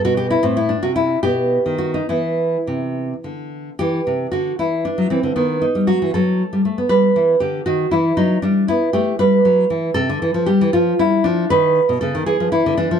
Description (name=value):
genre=classical, baroque-style dance for nylon-string guitar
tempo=68-80 BPM (dotted quarters)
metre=6/8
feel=rubato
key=E minor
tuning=A4 = 440 Hz
part: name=nylon-string guitar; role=solo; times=0.0-13.0 s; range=A2 to B4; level=-15 LUFS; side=equal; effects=none
room=light reverb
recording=dark, warm production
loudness=-15 LUFS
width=side -7 dB against mid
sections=0.0-3.8 A section; 3.8-13.0 B section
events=none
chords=0.4 Am; 1.2 B; 2.1 E5; 3.8 Em; 4.6 D9; 5.4 B7/D#; 6.9 Em; 7.7 D#m; 8.4 Em/G; 10.0 C; 10.7 Dmadd9/F; 11.5 B/D#; 12.3 Dmadd9